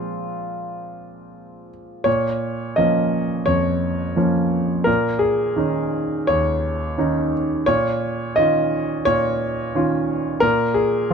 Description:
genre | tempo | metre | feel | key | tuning
neoclassical minimalist piano | 86 BPM | 4/4 | uneven beats, rubato | Bb minor | A4 = 440 Hz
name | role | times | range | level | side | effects
clear concert grand piano | solo | 0.0-11.1 s | Eb2 to Eb5 | -18 LUFS | equal | none
room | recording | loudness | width
light reverb | dark, warm production | -18 LUFS | side -6 dB against mid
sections
0.0-2.1 A section; 2.1-11.1 B section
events
none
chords
0.0 Fm/Bb; 2.1 Bbm; 4.9 Eb7sus4/Bb; 7.7 Dbadd9/Bb; 10.4 N.C.

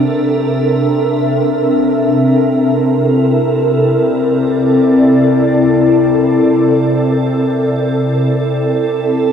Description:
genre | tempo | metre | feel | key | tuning
ambient | free time | none | none | C mixolydian | A4 = 441 Hz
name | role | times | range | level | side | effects
glassy FM pad | solo | 0.0-9.3 s | C3 to E5 | -10 LUFS | equal | ensemble chorus, built-in reverb, phaser, diffuse ambient delay
room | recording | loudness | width
wet huge ambient reverb, RT60 7.7 s | cassette tape | -10 LUFS | side -8 dB against mid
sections
0.0-9.3 A section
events
none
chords
0.0 C13; 7.8 Fmaj7/C (rootless)

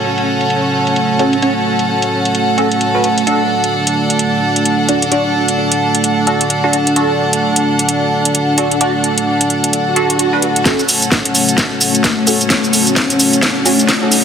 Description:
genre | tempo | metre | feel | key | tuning
bass house | 130 BPM | 4/4 | swing 60% on 16ths | F# minor | A4 = 436 Hz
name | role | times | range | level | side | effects
dark analog pad | sustained chords | 0.0-14.2 s | A3 to D5 | -17 LUFS | equal | chorus, sidechain pumping
rich chamber string section | texture | 0.0-14.2 s | C#4 to F#5 | -16 LUFS | equal | sidechain pumping
garage drum kit | drums | 0.2-14.2 s | hi-hat, shaker, snare drum | -14 LUFS | equal | low-pass filter on hats, low-pass filter on snare, low-pass filter on perc
band-passed chord stab | stabs | 1.2-14.2 s | C#4 to D5 | -19 LUFS | right 2 dB | phaser, wide subtle chorus, sidechain pumping, digital delay
swell and riser | sound effects | 9.9-14.2 s | none | -22 LUFS | right 3 dB | none
electronic kick drum | drums | 10.7-14.0 s | none | -19 LUFS | left 1 dB | high-pass filter on kick, high-pass filter on room
room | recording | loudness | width
moderate lush hall reverb, RT60 1.7 s | dense, heavily limited modern master, high-pass filter | -11 LUFS | side -7 dB against mid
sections
0.0-10.7 A section; 10.7-14.2 B section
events
filter sweep on synth stab 0.0-10.7; filter sweep on analog synth pad 0.0-10.7; swell 9.9-10.7; build-up 10.7-14.2; drum fill 10.7-14.2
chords
0.0 F#m; 3.3 D; 10.7 F#m

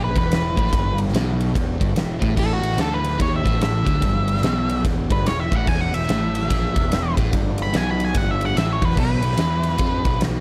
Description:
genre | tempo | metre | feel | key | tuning
blues rock power trio and southern rock | 145 BPM | 4/4 | swing 62% on 8ths | unclear | A4 = 440 Hz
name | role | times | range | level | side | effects
octave-fuzz lead guitar | melody | 0.0-10.2 s | F#4 to B5 | -28 LUFS | equal | distortion
crunchy overdriven guitar | riff | 0.0-10.4 s | E2 to F3 | -28 LUFS | equal | none
fuzz picked electric bass | bass | 0.0-10.4 s | E1 to F2 | -27 LUFS | equal | overdrive
huge arena drum kit | drums | 0.2-10.3 s | crash cymbal, kick drum, ride cymbal, snare drum | -25 LUFS | equal | none
room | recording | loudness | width
light reverb | none | -21 LUFS | mono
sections
0.0-10.4 A section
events
lead electric guitar solo 0.0-10.4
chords
0.0 E5; 2.4 A5; 4.0 E5; 9.0 B5

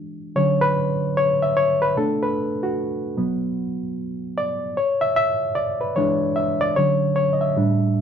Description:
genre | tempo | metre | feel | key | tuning
R&B | 75 BPM | 4/4 | swing 63% on 16ths | B minor | A4 = 440 Hz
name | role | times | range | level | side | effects
barky reed electric piano | solo | 0.0-8.0 s | A2 to E5 | -19 LUFS | equal | overdrive
room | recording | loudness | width
wet studio reverb, RT60 0.8 s | band playing live in one room | -19 LUFS | side -8 dB against mid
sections
0.0-8.0 A section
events
reed electric piano solo 0.0-8.0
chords
0.4 Dmaj7; 2.0 Bm7; 3.2 Bm; 4.8 E7; 6.8 Dmaj7

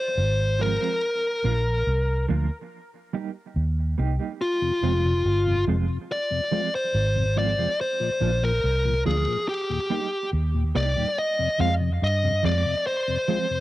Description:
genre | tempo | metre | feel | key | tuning
reggae | 71 BPM | 4/4 | straight | F dorian | A4 = 440 Hz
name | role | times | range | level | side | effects
smooth overdriven lead guitar | melody | 0.0-13.6 s | F4 to F5 | -25 LUFS | left 1 dB | dub echo
vintage muted fingered electric bass | bass | 0.2-12.6 s | F1 to G2 | -23 LUFS | equal | none
mellow electric guitar | accompaniment | 0.6-13.5 s | F3 to G4 | -30 LUFS | right 7 dB | tremolo, cassette tape, dub echo
mellow tonewheel organ | accompaniment | 4.6-13.6 s | Eb2 to G4 | -30 LUFS | left 4 dB | overdrive, chorus vibrato, slow rotary speaker, cassette tape
room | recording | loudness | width
light reverb | home recording on cassette | -22 LUFS | side -16 dB against mid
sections
0.0-11.2 A section; 11.2-13.6 B section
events
none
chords
0.0 Fm; 1.0 Bb; 2.7 Eb; 4.4 Fm; 7.8 Bb; 9.5 Eb; 11.2 Fm

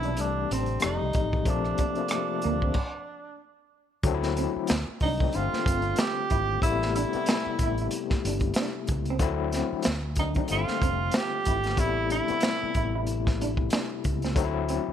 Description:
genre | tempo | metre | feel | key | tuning
R&B, neo-soul | 93 BPM | 4/4 | swing 56% on 16ths | A minor | A4 = 439 Hz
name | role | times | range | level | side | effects
warm tenor saxophone | melody | 0.0-13.0 s | C4 to G4 | -30 LUFS | right 3 dB | none
overdriven tine electric piano | accompaniment | 0.0-14.9 s | C3 to G4 | -30 LUFS | left 10 dB | fast tremolo
fretless electric bass | bass | 0.0-14.9 s | F1 to D2 | -31 LUFS | equal | none
crunchy breakbeat drum kit | drums | 0.0-14.9 s | crash cymbal, hi-hat, kick drum, rim click, snare drum | -28 LUFS | equal | none
electric guitar through a small old amp | second line | 0.1-14.8 s | Bb3 to E4 | -36 LUFS | right 8 dB | tremolo
room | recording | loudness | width
light reverb, small room ambience | none | -24 LUFS | side -9 dB against mid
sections
0.0-4.0 A section; 4.0-14.9 B section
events
stop 2.8-4.0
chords
0.2 C6; 0.8 F7; 1.5 Bbmaj7; 2.8 N.C.; 4.0 D9; 4.7 D7b9; 5.3 G9sus4; 6.6 Am9; 9.2 D9; 9.8 D7b9; 10.5 G9sus4; 11.8 Am9; 14.4 D9

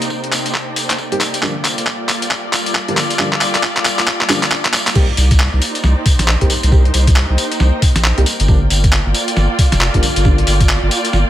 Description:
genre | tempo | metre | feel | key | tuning
UK garage, two-step garage | 136 BPM | 4/4 | swing 61% on 16ths | C dorian | A4 = 440 Hz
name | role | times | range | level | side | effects
soft string machine | sustained chords | 0.0-11.3 s | C3 to Eb5 | -27 LUFS | equal | ensemble chorus, sidechain pumping
boom bap sampler-style drum kit | drums | 0.0-11.2 s | crash cymbal, handclaps, hi-hat, snare drum, tambourine | -17 LUFS | equal | none
muted studio string section | texture | 0.0-11.3 s | Bb3 to G5 | -22 LUFS | equal | sidechain pumping
electronic kick drum | drums | 0.1-10.7 s | none | -14 LUFS | equal | high-pass filter on kick
dark baby grand piano | stabs | 1.1-10.3 s | D3 to G4 | -22 LUFS | right 1 dB | low-pass filter, ping-pong delay
saturated sub bass | bass | 5.2-11.2 s | F1 to C2 | -14 LUFS | equal | sidechain pumping
room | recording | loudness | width
digital ambience | none | -12 LUFS | side -13 dB against mid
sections
0.0-5.0 A section; 5.0-11.3 B section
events
build-up 0.0-5.0; drum fill 0.0-5.0; filter sweep on grand piano 0.0-5.0; drop 5.0-11.3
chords
0.0 Cm7; 1.4 Gm7; 5.0 Cm7; 8.5 Gm7

